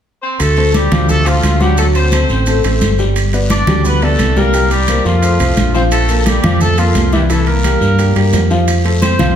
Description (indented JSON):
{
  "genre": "latin, salsa",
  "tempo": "174 BPM",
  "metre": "4/4",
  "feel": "straight",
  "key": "D minor",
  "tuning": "A4 = 438 Hz",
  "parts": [
    { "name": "clear horn section", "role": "melody", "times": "0.2-9.3 s", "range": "F3 to D5", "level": "-17 LUFS", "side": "equal", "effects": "none" },
    { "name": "fingered electric bass", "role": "bass", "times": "0.4-9.4 s", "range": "G1 to G2", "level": "-14 LUFS", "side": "equal", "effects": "none" },
    { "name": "congas", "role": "percussion", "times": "0.4-9.4 s", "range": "none", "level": "-20 LUFS", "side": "equal", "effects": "none" },
    { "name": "guiro", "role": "percussion", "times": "0.4-9.4 s", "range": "none", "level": "-29 LUFS", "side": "left 3 dB", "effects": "none" },
    { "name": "maracas", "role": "percussion", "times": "0.4-9.4 s", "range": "none", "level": "-29 LUFS", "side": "right 4 dB", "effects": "none" },
    { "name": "timbales", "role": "percussion", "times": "0.4-9.4 s", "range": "none", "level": "-24 LUFS", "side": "right 6 dB", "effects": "none" },
    { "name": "clear grand piano", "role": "accompaniment", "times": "0.6-9.4 s", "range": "E3 to G5", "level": "-18 LUFS", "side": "left 2 dB", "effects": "none" }
  ],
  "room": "wet large studio reverb, RT60 1.4 s",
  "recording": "heard from further back in the room",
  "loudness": "-10 LUFS",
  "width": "side -9 dB against mid",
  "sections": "0.4-9.4 A section",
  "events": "none",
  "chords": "0.4 Dm7; 1.8 D7; 3.2 G; 4.5 C5; 5.2 F; 5.9 Bb5; 7.3 C7; 8.7 F"
}